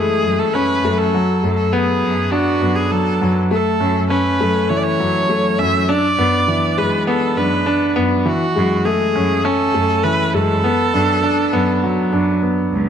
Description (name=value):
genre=piano and strings electronica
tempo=101 BPM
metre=4/4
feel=straight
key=unclear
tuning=A4 = 439 Hz
part: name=rich viola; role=melody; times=0.0-12.4 s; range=F#4 to E5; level=-20 LUFS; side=right 2 dB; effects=tape echo
part: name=warm concert grand piano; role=riff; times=0.0-12.9 s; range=E3 to D4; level=-17 LUFS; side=left 1 dB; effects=tape echo
part: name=clear chamber cello section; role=bass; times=0.2-12.9 s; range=C#2 to F#2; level=-22 LUFS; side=right 1 dB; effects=none
room=moderate scoring stage reverb, RT60 2.0 s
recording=faint mains hum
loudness=-14 LUFS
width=side -8 dB against mid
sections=0.0-12.9 A section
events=none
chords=0.0 Amaj7/F#; 1.1 Bm7/F#; 3.5 F#m7; 5.9 E7/F#; 8.3 Amaj7/F#; 10.6 Bm7/F#